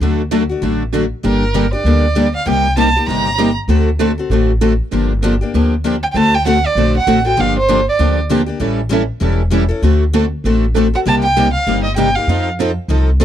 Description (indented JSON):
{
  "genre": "acoustic string swing (jazz manouche)",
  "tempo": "196 BPM",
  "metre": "4/4",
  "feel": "swing 59% on 8ths",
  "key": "G minor",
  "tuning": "A4 = 445 Hz",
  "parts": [
    { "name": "picked steel-string acoustic guitar", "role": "accompaniment", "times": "0.0-13.2 s", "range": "C3 to A4", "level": "-18 LUFS", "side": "left 6 dB", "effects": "none" },
    { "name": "picked swing-style acoustic guitar", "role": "accompaniment", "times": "0.0-13.2 s", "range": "C3 to A4", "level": "-20 LUFS", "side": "right 10 dB", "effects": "none" },
    { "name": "upright bass", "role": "bass", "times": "0.0-13.2 s", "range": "E1 to F2", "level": "-17 LUFS", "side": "equal", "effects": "none" },
    { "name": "warm violin", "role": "melody", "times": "1.3-3.5, 6.0-8.2, 10.9-12.5 s", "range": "Bb4 to Bb5", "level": "-16 LUFS", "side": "right 3 dB", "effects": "none" }
  ],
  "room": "little or no reverb",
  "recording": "dry, close 1970s-style studio recording",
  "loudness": "-12 LUFS",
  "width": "side -10 dB against mid",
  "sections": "0.0-6.1 A section; 6.1-13.2 B section",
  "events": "none",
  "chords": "0.0 D; 1.2 Gm; 2.5 Cm7; 3.7 D7; 4.9 Gm7; 6.1 D7; 7.4 Gm7; 8.6 A7; 9.8 D7; 11.1 Cm7; 12.3 F7"
}